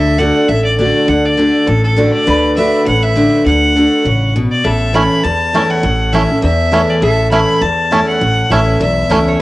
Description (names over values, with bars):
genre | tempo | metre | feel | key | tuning
bluegrass | 202 BPM | 4/4 | swing 56% on 8ths | A major | A4 = 442 Hz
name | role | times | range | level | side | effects
clear fiddle | melody | 0.0-9.4 s | A4 to B5 | -16 LUFS | equal | cassette tape
lap resonator guitar | second line | 0.0-9.2 s | A4 to B4 | -23 LUFS | left 1 dB | cassette tape
picked steel-string acoustic guitar | accompaniment | 0.0-9.4 s | E2 to F#4 | -14 LUFS | equal | cassette tape
upright bass | bass | 0.0-9.4 s | A1 to E2 | -17 LUFS | equal | none
bluegrass banjo | arpeggios | 5.0-9.2 s | A3 to E4 | -18 LUFS | right 2 dB | cassette tape
room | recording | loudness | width
light reverb | home recording on cassette | -10 LUFS | side -18 dB against mid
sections
0.0-9.4 A section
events
none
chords
0.0 D; 4.7 A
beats
0.19 0.49 0.79 | 1.08 1.38 1.68 1.98 | 2.27 2.57 2.87 3.17 | 3.46 3.76 4.06 4.35 | 4.65 4.95 5.25 5.54 | 5.84 6.14 6.43 6.73 | 7.03 7.32 7.62 7.92 | 8.21 8.51 8.81 9.10 | 9.40